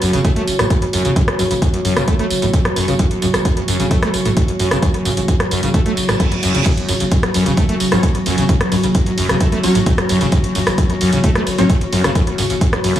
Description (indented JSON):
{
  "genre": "driving peak-time techno",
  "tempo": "131 BPM",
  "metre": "4/4",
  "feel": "straight",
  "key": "F# minor",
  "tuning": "A4 = 440 Hz",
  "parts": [
    { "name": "acid bass, saw", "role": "riff", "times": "0.0-13.0 s", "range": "F#1 to A3", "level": "-20 LUFS", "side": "equal", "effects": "lush chorus, sidechain pumping, analog delay" },
    { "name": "growling 808-style bass", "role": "bass", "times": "0.0-13.0 s", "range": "F#1", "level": "-26 LUFS", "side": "equal", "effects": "tube saturation, sidechain pumping, low-pass filter" },
    { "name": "metallic inharmonic drone", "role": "drone", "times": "0.0-13.0 s", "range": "F#3", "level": "-21 LUFS", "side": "equal", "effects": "chorus, built-in reverb, sidechain pumping" },
    { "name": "punchy analog drum machine", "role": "drums", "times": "0.0-13.0 s", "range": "crash cymbal, hi-hat, ride cymbal, rim click, tambourine", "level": "-21 LUFS", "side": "equal", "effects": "analog delay" },
    { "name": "electronic kick drum", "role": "drums", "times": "0.2-12.7 s", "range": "none", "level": "-17 LUFS", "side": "equal", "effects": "none" },
    { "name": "reverse cymbal", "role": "sound effects", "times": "6.0-6.7 s", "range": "none", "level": "-24 LUFS", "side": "right 5 dB", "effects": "none" },
    { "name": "rave stab", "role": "stabs", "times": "7.9-11.7 s", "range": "F#3 to C#5", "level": "-20 LUFS", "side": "equal", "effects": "chorus, built-in reverb, sidechain pumping, analog delay" }
  ],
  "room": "light reverb",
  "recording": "echo-heavy mix, small room ambience",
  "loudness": "-13 LUFS",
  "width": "side -11 dB against mid",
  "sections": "0.0-13.0 A section",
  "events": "reverse cymbal 6.0-6.7",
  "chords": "0.0 F#5",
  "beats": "0.25 0.70 | 1.16 1.62 2.08 2.54 | 2.99 3.45 3.91 4.37 | 4.83 5.28 5.74 6.20 | 6.66 7.12 7.57 8.03 | 8.49 8.95 9.41 9.86 | 10.32 10.78 11.24 11.70 | 12.15 12.61"
}